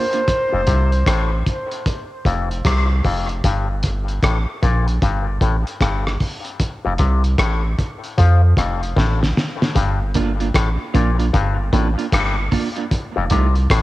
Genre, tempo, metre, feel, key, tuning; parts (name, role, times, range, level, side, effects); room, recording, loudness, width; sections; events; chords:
dub reggae; 76 BPM; 4/4; swing 63% on 16ths; G minor; A4 = 440 Hz
warm flugelhorn; melody; 0.0-1.5 s; C5; -22 LUFS; equal; cassette tape, dub echo
clean electric guitar; accompaniment; 0.0-0.2, 10.2-13.5 s; A3 to F4; -25 LUFS; right 6 dB; cassette tape, dub echo
cloth-damped thuddy drum kit; drums; 0.1-13.8 s; hi-hat, kick drum, rim click, snare drum; -20 LUFS; equal; cassette tape
overdriven clav; riff; 0.5-13.8 s; F2 to F3; -24 LUFS; left 5 dB; auto-wah, cassette tape, dub echo
soft dub sub bass; bass; 0.5-13.8 s; F1 to F2; -18 LUFS; equal; transformer saturation
light reverb, small room ambience; home recording on cassette; -16 LUFS; side -17 dB against mid
0.0-9.8 A section; 9.8-13.8 A section
drum fill 9.0-9.8
0.3 F; 3.4 Gm; 6.6 F; 9.8 Gm7; 12.9 F7